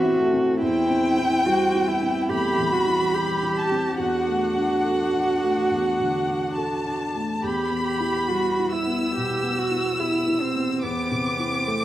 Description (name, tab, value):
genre	neoclassical piano and strings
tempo	71 BPM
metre	4/4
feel	rubato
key	E minor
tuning	A4 = 441 Hz
part	warm chamber violin section	melody	0.0-11.8 s	E5 to E6	-26 LUFS	left 2 dB	slapback echo
part	dark cello	second line	0.0-11.8 s	A3 to G4	-24 LUFS	right 2 dB	none
part	dark viola	accompaniment	0.0-11.8 s	G3 to D4	-33 LUFS	right 1 dB	none
part	felt-muted upright piano	accompaniment	0.0-11.8 s	E2 to A4	-27 LUFS	left 2 dB	none
room	moderate lush hall reverb, RT60 2.5 s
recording	rough home demo mix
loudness	-20 LUFS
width	side -13 dB against mid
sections	0.0-11.8 A section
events	none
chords	0.0 Am/E; 0.6 C/E; 4.0 D/E; 7.4 Em; 10.8 Am/E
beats	| 0.62 1.46 2.29 3.13 | 3.99 4.84 5.70 6.56 | 7.42 8.28 9.14 9.99 | 10.83 11.68